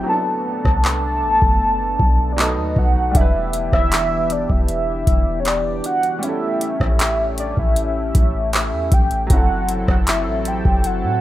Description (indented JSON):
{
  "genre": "contemporary R&B",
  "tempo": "78 BPM",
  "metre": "4/4",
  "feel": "straight",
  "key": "E minor",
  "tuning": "A4 = 440 Hz",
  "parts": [
    { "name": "warm velvety synth lead", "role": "melody", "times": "0.0-11.2 s", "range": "C#5 to A5", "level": "-21 LUFS", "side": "equal", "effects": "chorus, tremolo, ping-pong delay" },
    { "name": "clear grand piano", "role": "accompaniment", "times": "0.0-11.2 s", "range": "F#3 to B4", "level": "-30 LUFS", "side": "right 3 dB", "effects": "none" },
    { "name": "chorused pulse-width pad", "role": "sustained chords", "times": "0.0-11.2 s", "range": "E3 to A4", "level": "-27 LUFS", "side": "equal", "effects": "sidechain pumping" },
    { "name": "clean 808-style bass", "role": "bass", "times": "0.0-11.2 s", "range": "E1 to A2", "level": "-22 LUFS", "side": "equal", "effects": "none" },
    { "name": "booming analog drum machine", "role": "drums", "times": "0.6-11.0 s", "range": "handclaps, hi-hat, kick drum, rim click", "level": "-18 LUFS", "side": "equal", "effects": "none" }
  ],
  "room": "digital ambience",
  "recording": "rough home demo mix",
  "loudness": "-16 LUFS",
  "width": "side -14 dB against mid",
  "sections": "0.0-11.2 A section",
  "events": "break 0.0-3.2",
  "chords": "0.1 Bm7; 2.4 B7; 3.2 Em7; 6.2 A7; 9.3 F#m7b5",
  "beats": "| 0.07 0.84 1.61 2.38 | 3.15 3.92 4.69 5.46 | 6.23 7.00 7.77 8.54 | 9.30 10.07 10.84"
}